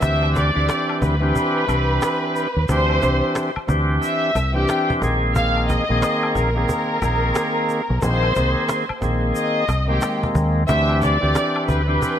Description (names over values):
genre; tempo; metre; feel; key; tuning
hip hop, boom-bap hip-hop; 90 BPM; 4/4; swing 61% on 16ths; unclear; A4 = 438 Hz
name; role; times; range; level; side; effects
bright studio violin section; melody; 0.0-12.2 s; G4 to F6; -23 LUFS; left 1 dB; high-pass filter, low-pass filter, tape echo
bright tonewheel organ; accompaniment; 0.0-12.2 s; Eb3 to Ab4; -22 LUFS; equal; slow rotary speaker, high-pass filter, low-pass filter
deep dub fingered electric bass; bass; 0.0-12.0 s; Bb1 to Eb2; -20 LUFS; equal; none
cajon; drums; 0.0-12.2 s; none; -27 LUFS; equal; none
tube shaker and woodblock; percussion; 0.0-12.2 s; none; -35 LUFS; left 4 dB; none
room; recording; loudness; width
light reverb, small room ambience; vinyl crackle; -17 LUFS; side -9 dB against mid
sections
0.0-12.2 A section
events
none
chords
0.0 D9sus4; 5.0 Bb9sus4; 10.7 D9sus4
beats
| 0.02 0.69 1.36 2.02 | 2.69 3.36 4.02 4.69 | 5.36 6.02 6.69 7.36 | 8.02 8.69 9.36 10.02 | 10.69 11.36 12.02